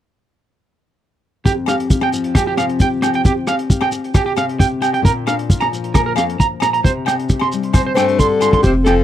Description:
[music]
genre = highlife guitar band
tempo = 134 BPM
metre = 4/4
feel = straight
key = F major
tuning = A4 = 440 Hz
[part]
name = flamenco guitar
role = accompaniment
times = 1.4-9.0 s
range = F2 to G4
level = -21 LUFS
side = left 5 dB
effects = none
[part]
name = electric guitar at the edge of break-up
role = arpeggios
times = 1.5-8.9 s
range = G4 to C6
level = -20 LUFS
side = right 7 dB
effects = tape echo
[part]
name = crunchy breakbeat drum kit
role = drums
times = 1.5-9.0 s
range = hi-hat, kick drum, rim click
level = -18 LUFS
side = equal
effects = none
[part]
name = shekere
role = percussion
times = 1.5-9.0 s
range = none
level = -20 LUFS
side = equal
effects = none
[part]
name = agogo bells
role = percussion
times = 1.7-9.0 s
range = none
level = -26 LUFS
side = left 23 dB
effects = none
[part]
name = growling alto saxophone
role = melody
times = 7.9-9.0 s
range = G4 to C5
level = -15 LUFS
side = left 3 dB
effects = none
[part]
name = raspy tenor saxophone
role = second line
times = 8.0-9.0 s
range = C3 to A3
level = -25 LUFS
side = left 9 dB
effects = none
[part]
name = upright bass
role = bass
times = 8.6-9.0 s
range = F1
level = -15 LUFS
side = equal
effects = none
[sound]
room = light reverb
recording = dry, close 1970s-style studio recording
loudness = -14 LUFS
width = side -11 dB against mid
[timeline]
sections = 1.5-8.6 A section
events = none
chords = 1.5 Fsus2; 5.0 Bb; 6.8 Csus2

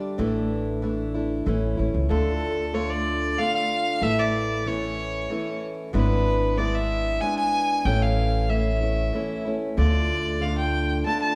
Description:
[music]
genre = acoustic folk duo or small band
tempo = 94 BPM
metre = 3/4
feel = straight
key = D harmonic minor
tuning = A4 = 440 Hz
[part]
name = picked steel-string acoustic guitar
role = melody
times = 0.0-1.4 s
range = D5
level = -52 LUFS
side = equal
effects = none
[part]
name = picked steel-string acoustic guitar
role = accompaniment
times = 0.0-11.3 s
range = A2 to G4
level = -29 LUFS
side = equal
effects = none
[part]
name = upright bass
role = bass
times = 0.2-11.0 s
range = G#1 to D2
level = -28 LUFS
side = equal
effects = none
[part]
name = warm fiddle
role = second line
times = 2.1-11.3 s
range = A4 to A5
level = -28 LUFS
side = equal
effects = none
[sound]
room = wet recital hall reverb, RT60 1.5 s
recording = recorded in a church or concert hall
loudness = -24 LUFS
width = mono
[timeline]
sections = 0.0-2.1 A section; 2.1-11.3 A section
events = fiddle solo 2.1-11.3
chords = 0.2 Asus4; 1.5 A; 2.1 Dm; 4.0 A; 5.9 E7/G#; 7.9 A; 9.8 Dm

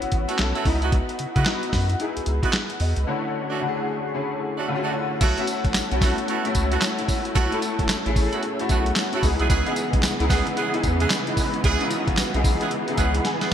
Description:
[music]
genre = R&B, new jack swing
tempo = 112 BPM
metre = 4/4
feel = swing 62% on 16ths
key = unclear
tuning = A4 = 441 Hz
[part]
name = clear grand piano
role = accompaniment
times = 0.0-13.5 s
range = D3 to B5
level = -26 LUFS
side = left 2 dB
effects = ensemble chorus
[part]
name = round analog bass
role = bass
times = 0.0-13.2 s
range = G#1 to C#3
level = -24 LUFS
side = equal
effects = none
[part]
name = dusty soul sampler-style drum kit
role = drums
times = 0.0-13.5 s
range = crash cymbal, handclaps, hi-hat, kick drum, snare drum, tambourine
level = -24 LUFS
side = equal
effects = gated reverb
[part]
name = clear horn section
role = stabs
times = 0.3-13.5 s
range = A3 to G#4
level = -29 LUFS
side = right 5 dB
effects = none
[part]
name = dark symphonic string section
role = sustained chords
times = 5.2-13.5 s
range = C#3 to E4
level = -30 LUFS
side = right 1 dB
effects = stereo widening
[sound]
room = light reverb, studio reverb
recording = bright 1980s-style digital production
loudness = -20 LUFS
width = side -9 dB against mid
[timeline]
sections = 0.0-5.2 A section; 5.2-13.5 B section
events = break 3.1-5.2; grand piano fill 12.7-13.5; drum fill 13.2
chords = 0.0 A6; 0.7 C#m11; 3.1 Dmaj7; 5.2 B7sus4; 9.2 C#m7

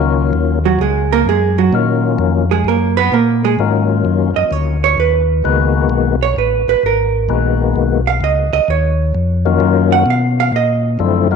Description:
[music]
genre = jazz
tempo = 130 BPM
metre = 4/4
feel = swing 68% on 8ths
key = Eb minor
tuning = A4 = 440 Hz
[part]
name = percussive tonewheel organ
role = melody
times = 0.0-11.4 s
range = D3 to Gb4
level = -18 LUFS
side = left 11 dB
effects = slow rotary speaker, overdrive, chorus vibrato, tape echo
[part]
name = mellow tonewheel organ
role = bass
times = 0.0-11.4 s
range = Ab1 to Cb3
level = -16 LUFS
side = left 1 dB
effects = slow rotary speaker
[part]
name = vintage hollow-body jazz guitar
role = accompaniment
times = 0.7-11.3 s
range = Gb3 to Gb5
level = -15 LUFS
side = right 9 dB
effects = none
[sound]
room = moderate echo chamber reverb, RT60 1.3 s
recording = 1960s-style stereo with parts hard left and right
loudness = -12 LUFS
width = side -6 dB against mid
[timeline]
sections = 0.0-11.4 A section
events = hollow-body jazz guitar solo 0.0-11.4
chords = 0.0 Ebm9; 5.0 Abm9; 8.7 Ebm9

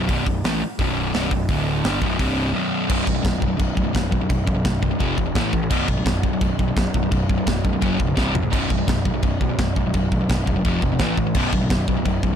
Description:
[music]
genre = heavy metal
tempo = 170 BPM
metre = 4/4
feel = straight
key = B minor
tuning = A4 = 440 Hz
[part]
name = sludgy distorted guitar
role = riff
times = 0.0-12.4 s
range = B1 to A3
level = -22 LUFS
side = equal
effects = overdrive
[part]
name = fuzz picked electric bass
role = bass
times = 0.0-12.4 s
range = B0 to A#1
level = -26 LUFS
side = equal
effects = overdrive
[part]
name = tight metal drum kit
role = drums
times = 0.1-12.3 s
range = china cymbal, crash cymbal, hi-hat, kick drum, snare drum, toms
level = -23 LUFS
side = equal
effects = none
[sound]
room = little or no reverb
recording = dark, warm production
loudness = -18 LUFS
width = side -8 dB against mid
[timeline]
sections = 0.0-2.9 A section; 2.9-12.4 B section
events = drum fill 8.2-8.5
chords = 0.0 B5; 1.5 D5; 1.8 Bm; 2.2 C5; 2.5 B5; 5.0 F5; 5.4 A5; 5.7 B5; 7.8 F#5; 8.2 C5; 8.5 B5; 10.7 F5; 11.0 A5; 11.4 B5

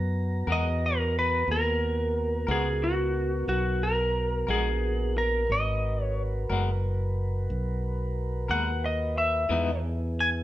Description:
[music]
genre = blues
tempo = 60 BPM (dotted quarters)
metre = 12/8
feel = straight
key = G# minor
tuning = A4 = 442 Hz
[part]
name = mellow tonewheel organ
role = sustained chords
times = 0.0-10.4 s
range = B3 to A#5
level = -35 LUFS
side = equal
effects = slow rotary speaker
[part]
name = fingered electric bass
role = bass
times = 0.0-10.4 s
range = F#1 to F#2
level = -28 LUFS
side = equal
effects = none
[part]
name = lightly driven lead guitar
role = melody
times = 0.5-10.3 s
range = F#4 to G#5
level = -27 LUFS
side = equal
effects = none
[part]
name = clean electric guitar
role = accompaniment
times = 0.5-9.7 s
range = E3 to A#4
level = -32 LUFS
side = left 4 dB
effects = tremolo
[sound]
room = moderate large studio reverb, RT60 1.2 s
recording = band playing live in one room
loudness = -25 LUFS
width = side -14 dB against mid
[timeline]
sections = 0.0-10.4 A section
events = none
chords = 0.0 G#m9; 9.5 Emaj7

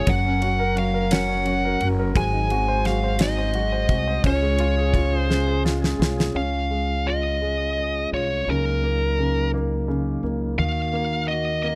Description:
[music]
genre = six-eight pop ballad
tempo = 57 BPM (dotted quarters)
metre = 6/8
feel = straight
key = Db major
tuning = A4 = 440 Hz
[part]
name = high-gain lead guitar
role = melody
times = 0.0-11.8 s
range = Bb4 to Ab5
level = -27 LUFS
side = equal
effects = distortion
[part]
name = clear grand piano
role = accompaniment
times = 0.0-11.8 s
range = Db3 to Db5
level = -30 LUFS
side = equal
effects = none
[part]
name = percussive tonewheel organ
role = sustained chords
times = 0.0-11.8 s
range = Eb3 to C5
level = -33 LUFS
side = equal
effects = chorus vibrato, slow rotary speaker
[part]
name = fingerpicked steel-string acoustic guitar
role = arpeggios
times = 0.0-6.4 s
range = Ab2 to Bb4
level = -33 LUFS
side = equal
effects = digital delay
[part]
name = upright bass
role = bass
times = 0.0-11.8 s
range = Gb1 to Eb2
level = -28 LUFS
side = equal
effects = none
[part]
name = damped 70s drum kit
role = drums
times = 0.1-6.4 s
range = kick drum, ride cymbal, snare drum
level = -26 LUFS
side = equal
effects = none
[sound]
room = little or no reverb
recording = none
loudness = -23 LUFS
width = mono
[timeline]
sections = 0.0-6.4 A section; 6.4-11.8 B section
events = drum fill 5.3-6.4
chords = 0.1 Gb; 2.2 Ab7; 4.2 Db; 8.5 Gb6/Db; 10.6 Ebm

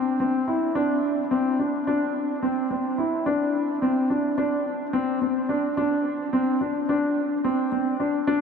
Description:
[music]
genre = progressive instrumental, progressive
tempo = 215 BPM (eighths)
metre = 9/8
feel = straight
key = C major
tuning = A4 = 438 Hz
[part]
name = warm concert grand piano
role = solo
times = 0.0-8.4 s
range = C4 to E4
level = -22 LUFS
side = left 1 dB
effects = wide subtle chorus, diffuse ambient delay
[sound]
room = wet huge ambient reverb, RT60 8.3 s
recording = dreamy mix soaked in reverb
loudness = -22 LUFS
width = side -6 dB against mid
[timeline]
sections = 0.0-8.4 A section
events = none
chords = none

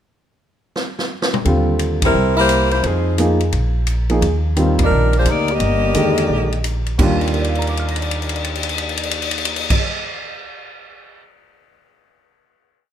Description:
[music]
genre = jazz, big band swing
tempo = 173 BPM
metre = 4/4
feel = swing 65% on 8ths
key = Eb major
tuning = A4 = 440 Hz
[part]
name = swinging big-band drum kit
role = drums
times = 0.8-11.2 s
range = crash cymbal, hi-hat, kick drum, ride cymbal, snare drum, toms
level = -22 LUFS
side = left 1 dB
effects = none
[part]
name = warm grand piano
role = accompaniment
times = 1.4-10.0 s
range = Eb2 to Bb6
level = -21 LUFS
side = right 1 dB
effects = none
[part]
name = upright bass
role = bass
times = 1.5-9.7 s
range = G1 to F2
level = -20 LUFS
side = equal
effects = none
[part]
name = clear saxophone section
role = melody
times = 2.0-6.7 s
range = F3 to Eb5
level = -17 LUFS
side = left 1 dB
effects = none
[sound]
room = light reverb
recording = minimal, uncompressed stereo recording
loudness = -15 LUFS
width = side -10 dB against mid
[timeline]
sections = 0.1-1.5 pickup bar; 1.5-7.0 A section; 7.0-9.8 final chord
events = drum fill 0.8-1.5, 7.2-9.7; band accent 2.0, 4.7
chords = 0.1 N.C.; 1.5 Ebmaj7; 2.1 C7; 2.8 Fm7; 3.5 Bb5; 4.2 Ebmaj7

